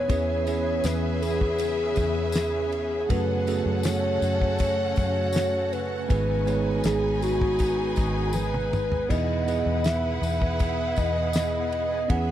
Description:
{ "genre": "pop ballad", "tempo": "80 BPM", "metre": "4/4", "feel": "straight", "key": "E major", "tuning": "A4 = 440 Hz", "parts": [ { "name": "hollow clarinet-like synth lead", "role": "melody", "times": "0.0-12.3 s", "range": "F#4 to F#5", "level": "-27 LUFS", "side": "equal", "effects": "chorus, slapback echo" }, { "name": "warm studio violin section", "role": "second line", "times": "0.0-12.3 s", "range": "C#4 to G#5", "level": "-34 LUFS", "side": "left 1 dB", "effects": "none" }, { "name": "bell-like tine electric piano", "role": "accompaniment", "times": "0.0-12.3 s", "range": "G#2 to C#5", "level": "-30 LUFS", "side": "right 6 dB", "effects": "none" }, { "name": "shimmering ambient pad", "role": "sustained chords", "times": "0.0-12.3 s", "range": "C#3 to G#4", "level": "-35 LUFS", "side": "left 2 dB", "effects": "chorus, built-in reverb" }, { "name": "vintage muted fingered electric bass", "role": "bass", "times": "0.0-12.3 s", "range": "G#1 to F#2", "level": "-29 LUFS", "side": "left 1 dB", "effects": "none" }, { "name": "damped 70s drum kit", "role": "drums", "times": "0.1-12.3 s", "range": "crash cymbal, kick drum, ride cymbal, snare drum, toms", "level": "-26 LUFS", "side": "left 1 dB", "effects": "none" }, { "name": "tambourine", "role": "percussion", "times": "0.1-11.5 s", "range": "none", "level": "-43 LUFS", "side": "left 7 dB", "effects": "none" } ], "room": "small room ambience", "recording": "dry, close 1970s-style studio recording", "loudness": "-22 LUFS", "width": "side -12 dB against mid", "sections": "0.0-12.3 A section", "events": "drum fill 8.3-9.1", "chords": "0.1 C#m7/E; 3.1 F#madd9; 6.1 G#m; 9.1 Emaj7" }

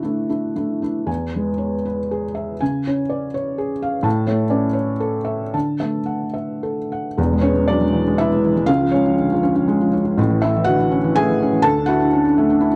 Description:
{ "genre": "neoclassical minimalist piano", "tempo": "107-128 BPM", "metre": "3/4", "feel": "rubato", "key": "E mixolydian", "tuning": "A4 = 440 Hz", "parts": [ { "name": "felt-muted upright piano", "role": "solo", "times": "0.0-12.8 s", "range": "E1 to A5", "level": "-19 LUFS", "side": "equal", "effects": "none" } ], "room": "little or no reverb", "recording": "dry, close 1970s-style studio recording", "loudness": "-19 LUFS", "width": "mono", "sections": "0.0-1.1 A section; 1.1-7.2 B section; 7.2-12.8 C section", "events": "none", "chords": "0.0 Dadd9; 1.1 E; 2.6 C#; 4.1 A; 5.5 Dadd9; 7.2 E; 8.7 C#; 10.2 A; 11.6 Dadd9" }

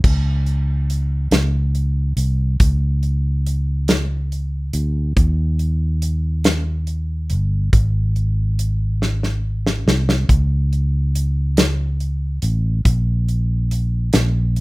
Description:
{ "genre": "slow gospel", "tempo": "47 BPM (dotted quarters)", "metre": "6/8", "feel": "straight", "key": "unclear", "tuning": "A4 = 443 Hz", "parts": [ { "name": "fingered electric bass", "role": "bass", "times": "0.0-14.6 s", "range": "G1 to Eb2", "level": "-18 LUFS", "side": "equal", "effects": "none" }, { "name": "natural country drum kit", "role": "drums", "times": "0.0-14.6 s", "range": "crash cymbal, hi-hat, kick drum, snare drum", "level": "-18 LUFS", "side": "equal", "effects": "none" } ], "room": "little or no reverb", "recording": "rough home demo mix", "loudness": "-17 LUFS", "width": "side -22 dB against mid", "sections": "0.0-14.6 A section", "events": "drum fill 9.0-10.3", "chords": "none" }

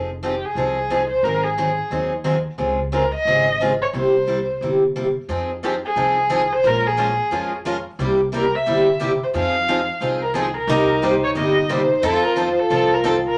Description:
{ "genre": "acoustic string swing (jazz manouche)", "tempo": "178 BPM", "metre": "4/4", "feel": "swing 60% on 8ths", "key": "F minor", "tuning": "A4 = 440 Hz", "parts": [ { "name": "picked steel-string acoustic guitar", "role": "accompaniment", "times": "0.0-13.2 s", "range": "C3 to Bb4", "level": "-24 LUFS", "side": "equal", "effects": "none" }, { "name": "upright bass", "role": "bass", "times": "0.0-13.2 s", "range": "F1 to F2", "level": "-32 LUFS", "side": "equal", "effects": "none" }, { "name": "dark violin", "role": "melody", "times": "0.2-13.4 s", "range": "G4 to F5", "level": "-23 LUFS", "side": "equal", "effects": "none" }, { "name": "picked swing-style acoustic guitar", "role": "accompaniment", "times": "5.3-13.2 s", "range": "C3 to Bb4", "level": "-31 LUFS", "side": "equal", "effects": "none" }, { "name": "picked steel-string acoustic guitar", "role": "second line", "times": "10.7-13.4 s", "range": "Eb4 to F4", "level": "-24 LUFS", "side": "equal", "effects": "none" } ], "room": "wet club reverb, RT60 0.6 s", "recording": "none", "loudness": "-20 LUFS", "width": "mono", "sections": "0.0-10.7 A section; 10.7-13.4 B section", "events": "none", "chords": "0.0 Fm7; 1.2 Ab7; 2.6 Dbmaj7; 3.9 C7; 5.3 Fm7; 6.6 Bbm7; 8.0 C7; 9.3 Fm7; 10.7 Cm7; 12.0 F7" }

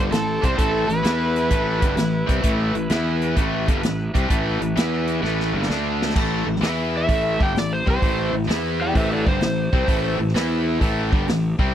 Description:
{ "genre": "blues rock power trio and southern rock", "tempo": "129 BPM", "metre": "4/4", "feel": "swing 68% on 8ths", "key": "A minor", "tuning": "A4 = 436 Hz", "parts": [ { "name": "cranked stack guitar", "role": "riff", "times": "0.0-11.7 s", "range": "G2 to E4", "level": "-23 LUFS", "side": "left 1 dB", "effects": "overdrive" }, { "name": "fuzz fingered electric bass", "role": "bass", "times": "0.0-11.7 s", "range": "G1 to E2", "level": "-25 LUFS", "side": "equal", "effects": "overdrive" }, { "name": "overdriven slide guitar", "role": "melody", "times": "0.1-10.2 s", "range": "A4 to G5", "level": "-26 LUFS", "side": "equal", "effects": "tape echo" }, { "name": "nasal lead guitar with a parked wah", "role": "second line", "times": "0.1-5.6 s", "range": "C4 to E4", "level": "-35 LUFS", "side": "right 6 dB", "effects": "overdrive" }, { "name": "vintage drum kit", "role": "drums", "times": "0.1-11.7 s", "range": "crash cymbal, hi-hat, kick drum, snare drum", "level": "-22 LUFS", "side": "equal", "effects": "none" } ], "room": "little or no reverb", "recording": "dry, close 1970s-style studio recording", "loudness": "-18 LUFS", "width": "side -10 dB against mid", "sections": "0.0-6.2 A section; 6.2-11.7 B section", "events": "drum fill 5.2-6.2; electric slide guitar solo 6.2-11.7", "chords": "0.0 Am; 1.0 E5; 1.5 Am; 2.9 E5; 3.4 Am; 4.8 E5; 5.2 A5; 5.7 D5; 6.2 A5; 6.6 E5; 7.1 Am; 8.5 E5; 8.9 Am; 10.3 E5; 10.8 Am" }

